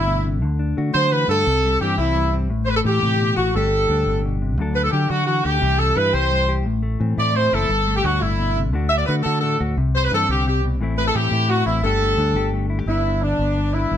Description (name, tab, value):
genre	highlife guitar band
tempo	116 BPM (dotted quarters)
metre	12/8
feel	straight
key	G major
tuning	A4 = 440 Hz
part	bright horn section	melody	0.0-14.0 s	D4 to E5	-20 LUFS	equal	none
part	mellow electric guitar	accompaniment	0.0-14.0 s	E2 to A4	-25 LUFS	left 5 dB	none
part	fingered electric bass	bass	0.0-14.0 s	F#1 to D3	-22 LUFS	equal	none
room	light reverb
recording	none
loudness	-17 LUFS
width	side -10 dB against mid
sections	0.0-12.9 A section; 12.9-14.0 B section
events	horn section solo 12.9-14.0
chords	0.4 D; 1.5 C; 2.5 Am; 3.5 Gsus2; 4.6 D; 5.6 C; 6.7 Am; 7.7 Gsus2; 8.7 D; 9.8 C; 10.8 Am; 11.8 Gsus2; 12.9 G